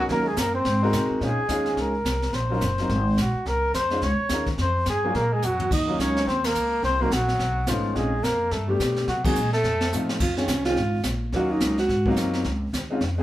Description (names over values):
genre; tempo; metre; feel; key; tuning
jazz, small-group swing and bop; 214 BPM; 4/4; swing 60% on 8ths; Bb minor; A4 = 440 Hz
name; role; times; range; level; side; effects
dark trumpet; melody; 0.0-10.1 s; F4 to Eb5; -26 LUFS; left 1 dB; none
breathy alto saxophone; second line; 0.0-1.1, 5.2-12.2 s; F3 to Gb4; -28 LUFS; right 2 dB; none
clear grand piano; accompaniment; 0.0-13.2 s; Eb3 to C5; -27 LUFS; left 1 dB; none
upright bass; bass; 0.0-13.2 s; Gb1 to C3; -27 LUFS; equal; none
jazz brush drum kit; drums; 0.1-13.2 s; brushed snare drum, crash cymbal, hi-hat, kick drum, ride cymbal, snare drum, toms; -29 LUFS; equal; none
room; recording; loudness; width
moderate large studio reverb, RT60 0.9 s; band playing live in one room; -21 LUFS; side -14 dB against mid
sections
0.0-1.2 A section; 1.2-10.2 B section; 10.2-13.2 C section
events
drum fill 5.4, 9.9; band accent 6.4, 9.2; alto saxophone solo 10.2-13.2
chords
0.1 Ebm7; 0.7 Ab7; 1.2 Bbm11; 2.3 Ebm9; 2.9 Ab9; 3.5 Dbmaj7; 4.6 Fmadd9; 5.2 Bb5; 5.7 Ebm7; 6.8 Cm7b5; 7.4 B9; 8.0 Bbm11; 8.5 G; 9.1 Cm7b5; 9.6 F7; 10.2 Bbm11; 11.3 Ebm9; 11.9 Ab13; 12.5 Dbmaj7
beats
| 0.09 0.37 0.65 0.94 | 1.22 1.50 1.78 2.06 | 2.34 2.62 2.90 3.18 | 3.46 3.75 4.03 4.31 | 4.59 4.87 5.15 5.43 | 5.71 5.99 6.27 6.55 | 6.84 7.12 7.40 7.68 | 7.96 8.24 8.52 8.80 | 9.08 9.36 9.64 9.93 | 10.21 10.49 10.77 11.05 | 11.33 11.61 11.89 12.17 | 12.46 12.74 13.02